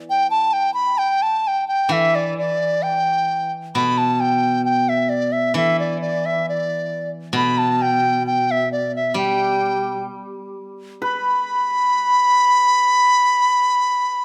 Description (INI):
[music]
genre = chinese traditional, Chinese chamber ensemble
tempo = 66 BPM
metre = 2/4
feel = rubato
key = unclear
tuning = A4 = 440 Hz
[part]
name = steel-string zither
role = accompaniment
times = 0.0-11.9 s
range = B2 to G3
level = -26 LUFS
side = equal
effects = none
[part]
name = bright reedy large dizi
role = melody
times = 0.1-14.2 s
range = D5 to B5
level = -20 LUFS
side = equal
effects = none
[part]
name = hammered dulcimer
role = second line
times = 11.0-14.2 s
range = B4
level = -29 LUFS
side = equal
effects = none
[sound]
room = moderate recital hall reverb, RT60 1.4 s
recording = none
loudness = -19 LUFS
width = mono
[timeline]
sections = 0.0-11.0 A section; 11.0-14.2 B section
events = none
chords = none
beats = | 0.09 0.98 | 1.90 2.83 | 3.75 4.66 | 5.56 6.46 | 7.35 8.25 | 9.16 10.08 | 11.00 11.92 | 12.82 13.72